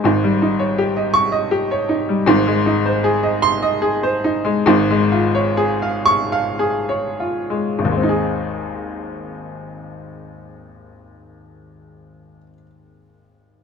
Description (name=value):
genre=classical, romantic character piece for solo piano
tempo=46-82 BPM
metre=3/4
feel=rubato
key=Ab major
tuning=A4 = 440 Hz
part: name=clear upright piano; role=solo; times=0.0-13.6 s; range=Ab1 to Db6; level=-16 LUFS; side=equal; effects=none
room=light reverb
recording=close, detailed microphones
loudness=-16 LUFS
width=side -6 dB against mid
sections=0.0-7.8 A section; 7.8-13.6 B section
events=slowing down 1.2-7.8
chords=0.1 Eb7/Ab; 2.3 Ab; 4.7 Db/Ab; 7.8 Ab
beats=| 0.06 0.80 1.54 | 2.30 3.06 3.83 | 4.67 5.57 6.59 | 7.79 8.84 9.91 | 10.98 12.06 13.10